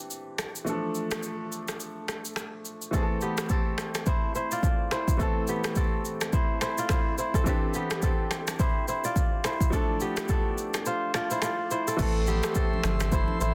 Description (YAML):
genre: afrobeats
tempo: 106 BPM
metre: 4/4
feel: swing 58% on 16ths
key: C major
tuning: A4 = 439 Hz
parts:
  - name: bright grand piano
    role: accompaniment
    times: 0.0-13.5 s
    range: E3 to A4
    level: -36 LUFS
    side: equal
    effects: none
  - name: afro-pop drum kit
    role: drums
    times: 0.1-13.5 s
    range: crash cymbal, finger snaps, kick drum, rim click, shaker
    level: -30 LUFS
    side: equal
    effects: soft clipping on snare
  - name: kora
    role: riff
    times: 2.9-13.5 s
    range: B3 to D5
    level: -33 LUFS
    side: equal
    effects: tape echo
  - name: pipe organ, sparkling flutes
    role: sustained chords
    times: 12.0-13.5 s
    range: A4 to C6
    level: -38 LUFS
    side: equal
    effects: none
  - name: warm sub bass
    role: bass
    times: 12.0-13.5 s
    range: G1 to A1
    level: -30 LUFS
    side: equal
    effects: none
  - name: congas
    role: percussion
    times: 12.0-13.4 s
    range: none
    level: -38 LUFS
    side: equal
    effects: none
room: small room ambience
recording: dense, heavily limited modern master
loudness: -28 LUFS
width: mono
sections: 0.0-12.0 A section; 12.0-13.5 B section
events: kick muted 10.9-12.0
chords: 0.0 Cadd9; 0.7 Dm; 2.9 Cadd9; 9.7 Dm; 12.0 Cadd9